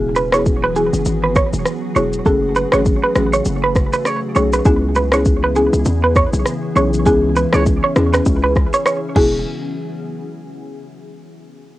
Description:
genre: afrobeats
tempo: 100 BPM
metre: 4/4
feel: swing 58% on 16ths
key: unclear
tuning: A4 = 440 Hz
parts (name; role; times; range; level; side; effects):
- folk marimba with medium mallets; accompaniment; 0.0-9.4 s; A3 to G#4; -19 LUFS; left 2 dB; cassette tape, plate reverb
- glassy FM pad; sustained chords; 0.0-9.4 s; C#3 to G#4; -24 LUFS; left 1 dB; ensemble chorus, built-in reverb, sidechain pumping, cassette tape
- hard-hitting 808-style bass; bass; 0.0-9.4 s; E1 to E2; -19 LUFS; equal; none
- clean electric guitar; riff; 0.2-9.3 s; G#4 to C#5; -18 LUFS; right 3 dB; lush chorus, cassette tape, analog delay
- afro-pop drum kit; drums; 0.2-9.3 s; crash cymbal, kick drum, rim click, shaker; -18 LUFS; equal; cassette tape
room: moderate studio ambience, RT60 0.5 s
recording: home recording on cassette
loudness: -13 LUFS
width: side -16 dB against mid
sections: 0.0-9.5 A section; 9.5-11.8 B section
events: none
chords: 0.0 Eadd9; 2.3 F#madd9; 4.7 C#m7; 9.2 Eadd9; 9.5 N.C.

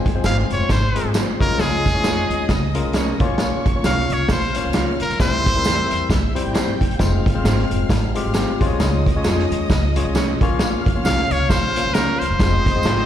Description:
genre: uptempo 1960s-style soul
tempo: 133 BPM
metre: 4/4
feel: swing 58% on 8ths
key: F minor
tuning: A4 = 442 Hz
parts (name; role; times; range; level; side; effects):
- warm studio violin section; second line; 0.0-13.1 s; Ab4 to G6; -30 LUFS; equal; slapback echo
- barky tine electric piano; accompaniment; 0.0-13.1 s; G3 to Db5; -25 LUFS; left 6 dB; overdrive, auto-pan, slapback echo
- upright bass; bass; 0.1-13.1 s; Eb1 to F2; -22 LUFS; equal; none
- vintage drum kit; drums; 0.1-13.0 s; hi-hat, kick drum, snare drum; -21 LUFS; equal; none
- electric guitar through a small old amp; stabs; 0.2-13.0 s; C4 to Db5; -30 LUFS; right 8 dB; slapback echo
- tambourine; percussion; 0.2-13.0 s; none; -37 LUFS; right 2 dB; none
- brilliant trumpet; melody; 0.3-6.1, 11.1-13.1 s; Ab4 to F5; -22 LUFS; equal; slapback echo
room: light reverb, small room reverb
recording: live gig heard through the venue's PA, recital hall reverb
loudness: -16 LUFS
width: side -10 dB against mid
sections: 0.0-13.1 A section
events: none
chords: 0.0 Fm; 1.4 Db; 3.2 Bbm; 5.2 C; 7.0 Fm; 8.6 Db; 10.4 Bbm; 12.4 Fm

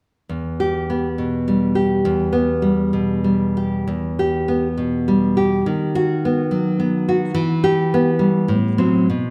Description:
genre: romantic piece for solo classical guitar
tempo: 93-108 BPM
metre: 3/4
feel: rubato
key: E minor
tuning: A4 = 436 Hz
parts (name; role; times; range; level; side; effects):
- nylon-string guitar; solo; 0.3-9.3 s; E2 to G4; -19 LUFS; equal; none
room: wet recital hall reverb, RT60 1.6 s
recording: none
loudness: -19 LUFS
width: mono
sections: 0.3-3.9 A section; 3.9-9.3 B section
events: none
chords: 0.3 Em; 5.7 B/D#; 7.4 Em; 8.5 F#dim/A

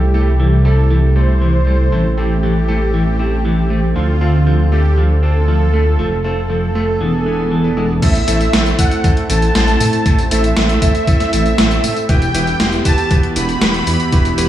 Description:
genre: synthwave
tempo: 118 BPM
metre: 4/4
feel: straight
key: A dorian from 8.0 s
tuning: A4 = 441 Hz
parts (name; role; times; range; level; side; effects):
- soft supersaw; melody; 0.0-14.5 s; F4 to B5; -21 LUFS; right 1 dB; tape echo, shimmer reverb
- brassy analog pad; sustained chords; 0.0-14.5 s; C3 to G#5; -21 LUFS; right 1 dB; chorus, sidechain pumping, shimmer reverb
- clear electric grand piano; stabs; 0.0-14.5 s; A3 to B4; -23 LUFS; equal; low-pass filter, tape echo, shimmer reverb
- wide detuned saw bass; bass; 0.0-14.5 s; E1 to A2; -15 LUFS; equal; chorus
- clean electric guitar; arpeggios; 0.1-7.9 s; E3 to C4; -23 LUFS; left 2 dB; tape echo
- electronic kick drum; drums; 8.0-14.2 s; none; -14 LUFS; equal; studio reverb
- gated 80s digital drum machine; drums; 8.0-14.5 s; crash cymbal, hi-hat, snare drum, tambourine; -18 LUFS; equal; gated reverb, gated reverb snare, studio reverb
room: light reverb, digital ambience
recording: studio reverb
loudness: -12 LUFS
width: side -12 dB against mid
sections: 0.0-8.0 A section; 8.0-14.5 B section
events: none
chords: 0.0 C6; 1.9 Am; 4.0 Dm7; 6.0 F; 7.0 E7; 8.0 Am; 12.1 Emadd9

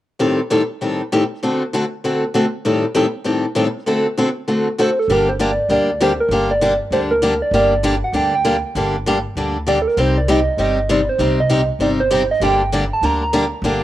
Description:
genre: acoustic string swing (jazz manouche)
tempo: 196 BPM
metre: 4/4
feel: swing 59% on 8ths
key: G harmonic minor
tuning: A4 = 440 Hz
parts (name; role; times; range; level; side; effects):
- picked steel-string acoustic guitar; accompaniment; 0.2-13.8 s; A2 to A4; -17 LUFS; left 1 dB; plate reverb
- soft struck synth lead; melody; 4.8-13.5 s; A4 to Bb5; -18 LUFS; right 2 dB; chorus, plate reverb, analog delay
- upright bass; bass; 5.1-13.8 s; G1 to D2; -23 LUFS; equal; none
room: moderate small room reverb, RT60 0.5 s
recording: home recording on cassette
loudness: -15 LUFS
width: side -14 dB against mid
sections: 0.2-5.1 A section; 5.1-13.8 B section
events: none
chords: 0.2 Am7b5; 1.4 D7; 2.6 Am7b5; 3.9 D7; 5.1 Gm; 10.0 Cm; 12.4 Gm

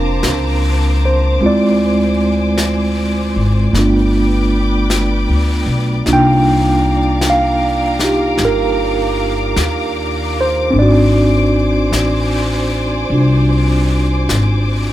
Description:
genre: jazz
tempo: 51 BPM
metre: 4/4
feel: swing 67% on 8ths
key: unclear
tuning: A4 = 440 Hz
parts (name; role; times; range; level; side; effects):
- tine electric piano; accompaniment; 0.0-14.9 s; Ab3 to G5; -15 LUFS; right 2 dB; medium tremolo
- clear studio string section; sustained chords; 0.0-14.9 s; Bb4 to D6; -23 LUFS; left 1 dB; none
- upright bass; bass; 0.0-14.9 s; F1 to Eb2; -16 LUFS; left 1 dB; none
- jazz brush drum kit; drums; 0.2-14.9 s; brushed snare drum, hi-hat, snare drum; -25 LUFS; left 2 dB; none
room: light reverb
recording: none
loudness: -12 LUFS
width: side -14 dB against mid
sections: 0.0-14.9 A section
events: none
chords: 0.0 Bbmaj9; 1.4 Dm7b5; 3.7 G7; 6.1 Cm11; 10.8 Ab7#11

